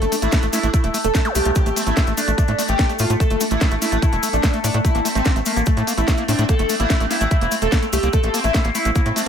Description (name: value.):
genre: psychedelic trance.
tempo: 146 BPM.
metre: 4/4.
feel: straight.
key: A phrygian.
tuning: A4 = 441 Hz.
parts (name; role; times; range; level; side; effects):
overdriven synth lead; melody; 0.0-9.2 s; A3 to A4; -23 LUFS; equal; distortion, chorus, phaser, sidechain pumping, ping-pong delay.
overtone-sweeping drone; sustained chords; 0.0-9.3 s; A3 to A4; -26 LUFS; left 1 dB; chorus, built-in reverb, phaser, sidechain pumping.
overdriven acid bass; riff; 0.0-9.2 s; A3 to Bb3; -26 LUFS; equal; distortion, auto-pan, sidechain pumping, diffuse ambient delay.
tight sequencer bass; bass; 0.0-9.1 s; E1 to A2; -22 LUFS; equal; tube saturation.
garage drum kit; drums; 0.0-9.2 s; hi-hat, snare drum; -26 LUFS; equal; none.
cabasa; percussion; 0.0-9.2 s; none; -30 LUFS; left 5 dB; none.
metallic wobble bass; second line; 0.1-9.2 s; C4 to D4; -34 LUFS; right 3 dB; distortion, ensemble chorus, sidechain pumping, high-pass filter, ping-pong delay.
electronic kick drum; drums; 0.3-9.0 s; none; -18 LUFS; equal; none.
zap; sound effects; 1.2-1.4 s; none; -28 LUFS; equal; none.
room: light reverb.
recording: none.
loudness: -16 LUFS.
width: side -8 dB against mid.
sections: 0.0-9.3 A section.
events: none.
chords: 0.0 A5.